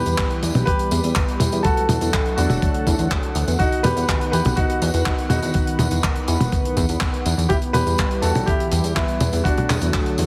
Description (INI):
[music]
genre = italo disco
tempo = 123 BPM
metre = 4/4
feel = straight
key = E harmonic minor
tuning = A4 = 441 Hz
[part]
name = clear grand piano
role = melody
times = 0.0-10.3 s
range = B3 to B4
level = -27 LUFS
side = equal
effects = tape echo
[part]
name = warm analog pad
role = sustained chords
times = 0.0-10.3 s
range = D3 to F#5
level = -29 LUFS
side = equal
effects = chorus
[part]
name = chorused synth bass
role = bass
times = 0.0-10.3 s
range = E1 to E2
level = -24 LUFS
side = equal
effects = none
[part]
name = damped 70s drum kit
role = drums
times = 0.1-10.3 s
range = handclaps, hi-hat, tambourine, toms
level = -27 LUFS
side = equal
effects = studio reverb
[part]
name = electronic kick drum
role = drums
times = 0.2-10.0 s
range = none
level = -25 LUFS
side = equal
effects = studio reverb
[sound]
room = light reverb, studio ambience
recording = heavily compressed radio sound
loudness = -20 LUFS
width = mono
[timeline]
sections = 0.0-10.3 A section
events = none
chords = 0.0 Em; 1.6 D; 3.6 B; 7.5 Em; 9.5 D